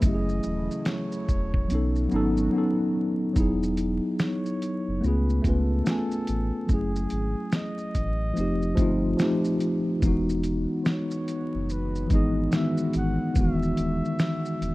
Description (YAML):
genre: lo-fi hip hop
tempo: 72 BPM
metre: 4/4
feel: swing 63% on 16ths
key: E major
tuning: A4 = 439 Hz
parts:
  - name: breathy flugelhorn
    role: melody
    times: 0.0-14.7 s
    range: G#4 to F#5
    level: -38 LUFS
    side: right 1 dB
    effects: none
  - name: mellow tine electric piano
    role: accompaniment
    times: 0.0-14.7 s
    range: D#3 to G#5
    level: -26 LUFS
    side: left 1 dB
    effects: medium stereo tremolo
  - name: warbly tape-like pad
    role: sustained chords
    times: 0.0-3.3, 10.0-14.7 s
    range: C#3 to F#4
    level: -39 LUFS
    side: equal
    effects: chorus, built-in reverb
  - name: sub bass with octave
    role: bass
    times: 0.0-14.7 s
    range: D#1 to C#2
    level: -28 LUFS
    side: equal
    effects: none
  - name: lo-fi sampler-style drum kit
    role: drums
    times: 0.0-14.7 s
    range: hi-hat, kick drum, shaker, snare drum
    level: -26 LUFS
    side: equal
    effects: none
room: little or no reverb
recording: rough home demo mix, vinyl crackle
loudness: -23 LUFS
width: side -19 dB against mid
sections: 0.0-3.4 A section; 3.4-14.7 B section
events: drums muted 2.5-3.4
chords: 0.0 F#m7; 1.7 B7; 3.4 Emaj9; 5.0 C#7b13; 6.7 F#m9; 8.4 F9; 10.0 Emaj9